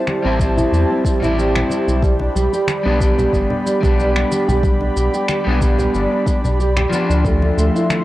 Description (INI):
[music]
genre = organic downtempo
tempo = 92 BPM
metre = 4/4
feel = swing 53% on 16ths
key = unclear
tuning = A4 = 440 Hz
[part]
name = electric guitar at the edge of break-up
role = accompaniment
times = 0.0-8.0 s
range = F3 to E4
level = -21 LUFS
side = left 1 dB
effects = sidechain pumping, cassette tape, tape echo
[part]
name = airy breathy pad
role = sustained chords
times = 0.0-8.0 s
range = F3 to C6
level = -23 LUFS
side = equal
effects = chorus, sidechain pumping, cassette tape
[part]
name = nylon-string guitar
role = arpeggios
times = 0.0-8.0 s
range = G3 to G4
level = -21 LUFS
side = right 2 dB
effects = cassette tape, tape echo
[part]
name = electronic finger snaps and shaker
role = drums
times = 0.1-8.0 s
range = none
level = -27 LUFS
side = equal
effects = overdrive, cassette tape
[part]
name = congas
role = percussion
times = 0.1-8.0 s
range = none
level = -27 LUFS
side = equal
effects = none
[part]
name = round analog bass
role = bass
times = 0.2-7.7 s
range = G1 to E2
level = -18 LUFS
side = equal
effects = none
[part]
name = electronic kick drum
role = drums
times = 0.4-7.4 s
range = none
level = -19 LUFS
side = equal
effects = overdrive, cassette tape
[sound]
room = light reverb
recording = home recording on cassette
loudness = -14 LUFS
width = side -16 dB against mid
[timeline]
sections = 0.0-8.0 A section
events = none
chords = 0.0 Am7; 2.0 G; 7.2 Dm9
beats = 0.07 0.72 1.38 | 2.03 2.68 3.33 3.98 | 4.63 5.29 5.94 6.59 | 7.24 7.90